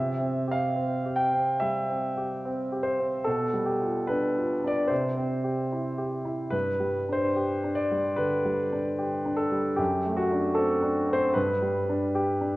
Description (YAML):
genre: classical, romantic character piece for solo piano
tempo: 70-78 BPM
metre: 4/4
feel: rubato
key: C major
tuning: A4 = 440 Hz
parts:
  - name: clear concert grand piano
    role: solo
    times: 0.0-12.6 s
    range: F#2 to G5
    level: -25 LUFS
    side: equal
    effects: none
room: wet recital hall reverb, RT60 1.7 s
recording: worn, warbling old tape, cassette tape, warbly pitch drift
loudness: -25 LUFS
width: side -19 dB against mid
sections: 0.0-12.6 A section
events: none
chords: 0.0 C; 3.3 G7/B; 4.9 C; 6.5 G; 9.8 D7/F#; 11.4 G